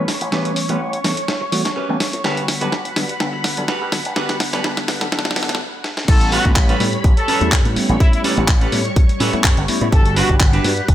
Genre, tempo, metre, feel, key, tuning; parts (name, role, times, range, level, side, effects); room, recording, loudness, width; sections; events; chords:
filtered disco house; 125 BPM; 4/4; swing 54% on 16ths; A mixolydian; A4 = 440 Hz
bell-like tine electric piano; accompaniment; 0.0-10.7 s; D3 to G4; -24 LUFS; equal; phaser, sidechain pumping, low-pass filter
string machine, full ensemble; sustained chords; 0.0-10.9 s; G3 to C#6; -25 LUFS; equal; ensemble chorus, sidechain pumping, low-pass filter
clean electric guitar; riff; 0.0-10.9 s; C#4 to B4; -24 LUFS; right 2 dB; sidechain pumping, low-pass filter
slap bass with an envelope filter; bass; 0.0-10.9 s; G1 to A2; -23 LUFS; equal; tube saturation, sidechain pumping, high-pass filter, low-pass filter
dusty soul sampler-style drum kit; drums; 0.1-10.9 s; crash cymbal, handclaps, hi-hat, snare drum; -21 LUFS; equal; sidechain pumping on hats, sidechain pumping on cymbals
clear trumpet section; melody; 6.1-10.3 s; E4 to A4; -22 LUFS; left 1 dB; vintage 12-bit sampler grit, sidechain pumping, low-pass filter
electronic kick drum; drums; 6.1-10.9 s; -14 LUFS; equal
light reverb; high-pass filter; -15 LUFS; side -12 dB against mid
0.0-6.1 A section; 6.1-10.9 B section
build-up 0.0-6.1; drum fill 0.0-5.6, 5.8; filter sweep 0.0-6.1; stop 5.6-6.1; drop 6.1-10.9
0.0 A9; 2.2 Gmaj7; 6.1 A9; 9.9 Gmaj7